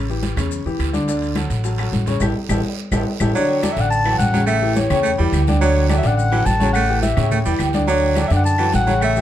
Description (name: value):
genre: latin, salsa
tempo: 212 BPM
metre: 4/4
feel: straight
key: D major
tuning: A4 = 440 Hz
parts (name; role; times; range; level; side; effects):
- clear grand piano; accompaniment; 0.0-9.2 s; C#3 to D5; -23 LUFS; left 3 dB; none
- upright bass; bass; 0.0-9.2 s; A1 to A2; -20 LUFS; right 1 dB; none
- congas; percussion; 0.1-9.2 s; none; -25 LUFS; left 1 dB; none
- maracas; percussion; 0.1-9.2 s; none; -37 LUFS; left 7 dB; none
- guiro; percussion; 0.2-9.2 s; none; -35 LUFS; right 9 dB; none
- timbales and agogo bells; percussion; 0.2-9.2 s; none; -28 LUFS; right 2 dB; none
- claves; percussion; 0.4-9.2 s; none; -33 LUFS; left 2 dB; none
- warm clarinet; melody; 3.4-9.2 s; C#5 to A5; -20 LUFS; left 2 dB; plate reverb
- bright baritone saxophone; second line; 3.4-9.2 s; E3 to A3; -24 LUFS; right 7 dB; none
room: moderate studio reverb, RT60 0.6 s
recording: dark, warm production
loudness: -16 LUFS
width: side -12 dB against mid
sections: 0.0-3.4 A section; 3.4-9.2 B section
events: drum fill 2.2-3.4; band accent 2.2-3.4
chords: 0.0 A7; 1.1 Dmaj7; 2.2 A5; 3.4 Dmaj7; 4.5 A7; 5.6 Dmaj7; 6.7 A7; 7.9 Dmaj7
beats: 0.23 0.51 0.80 | 1.08 1.36 1.65 1.93 | 2.21 2.50 2.78 3.07 | 3.35 3.63 3.92 4.20 | 4.48 4.77 5.05 5.33 | 5.62 5.90 6.18 6.47 | 6.75 7.03 7.32 7.60 | 7.88 8.17 8.45 8.73 | 9.02